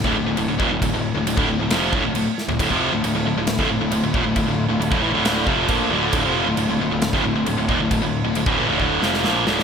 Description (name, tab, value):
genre	heavy metal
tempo	135 BPM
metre	4/4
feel	straight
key	D minor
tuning	A4 = 440 Hz
part	distorted electric guitar	riff	0.0-9.6 s	D2 to Bb3	-22 LUFS	right 10 dB	overdrive
part	heavy high-gain guitar	riff	0.0-9.6 s	D2 to Bb3	-22 LUFS	left 8 dB	distortion
part	fuzz picked electric bass	bass	0.0-9.6 s	D1 to Bb1	-27 LUFS	equal	overdrive
part	big rock drum kit	drums	0.0-9.6 s	crash cymbal, kick drum, snare drum, toms	-25 LUFS	right 1 dB	gated reverb
part	warm chamber string section	sustained chords	2.6-9.6 s	D3 to F4	-30 LUFS	equal	none
room	moderate lush hall reverb, RT60 2.1 s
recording	bright 1980s-style digital production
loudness	-18 LUFS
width	side -6 dB against mid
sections	0.0-9.6 A section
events	drum fill 2.4, 8.8-9.6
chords	0.0 Dm